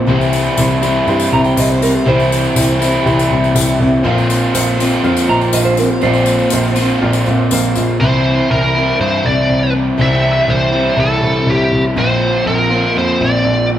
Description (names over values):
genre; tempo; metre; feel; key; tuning
folk rock and heartland rock; 121 BPM; 4/4; straight; C mixolydian; A4 = 440 Hz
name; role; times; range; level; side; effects
clean electric guitar; second line; 0.0-7.0 s; G4 to Bb5; -18 LUFS; right 2 dB; none
picked steel-string acoustic guitar; accompaniment; 0.0-13.8 s; Bb2 to F4; -20 LUFS; left 3 dB; none
crunchy overdriven guitar; riff; 0.0-13.8 s; Bb2 to F4; -16 LUFS; right 1 dB; none
dark grand piano; bass; 0.0-13.8 s; Bb1 to G2; -17 LUFS; left 1 dB; none
clear upright piano; accompaniment; 0.1-7.9 s; E4 to G5; -25 LUFS; right 2 dB; none
mellow tonewheel organ; sustained chords; 0.1-8.0 s; G4 to C6; -26 LUFS; equal; none
tambourine; percussion; 0.2-7.9 s; none; -25 LUFS; left 5 dB; none
biting lead guitar; melody; 8.0-13.7 s; G4 to E5; -16 LUFS; equal; overdrive
room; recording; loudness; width
moderate stone room reverb, RT60 1.4 s; band playing live in one room; -11 LUFS; side -11 dB against mid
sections
0.0-8.0 A section; 8.0-13.8 B section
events
clean electric guitar solo 0.0-8.0; upright piano fill 3.3-4.0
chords
0.1 C; 4.0 Bbsus2; 8.0 C; 12.0 Bbsus2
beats
| 0.09 0.58 1.08 1.57 | 2.07 2.56 3.06 3.56 | 4.05 4.54 5.04 5.54 | 6.03 6.53 7.02 7.51 | 8.01 8.51 9.00 9.50 | 9.99 10.49 10.98 11.48 | 11.97 12.47 12.96 13.46